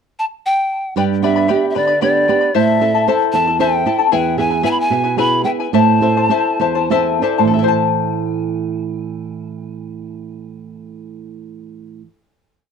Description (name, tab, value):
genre	andean folk, Andean ensemble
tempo	61-76 BPM (dotted quarters)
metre	6/8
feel	straight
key	A minor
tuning	A4 = 440 Hz
part	polished pan flute	melody	0.2-6.9 s	D5 to B5	-18 LUFS	equal	tape echo
part	charango	accompaniment	1.0-12.3 s	E4 to B5	-18 LUFS	left 14 dB	none
part	flamenco guitar	accompaniment	1.0-12.3 s	E2 to A5	-18 LUFS	right 8 dB	none
room	moderate small room reverb, RT60 0.6 s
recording	dry, close 1970s-style studio recording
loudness	-13 LUFS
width	side -6 dB against mid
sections	0.0-1.0 pickup bar; 1.0-7.5 A section; 7.5-11.5 final chord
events	slowing down 4.1-7.5; nylon-string guitar fill 6.6-7.5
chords	0.0 N.C.; 1.0 G; 2.5 Am; 4.1 E; 5.7 Am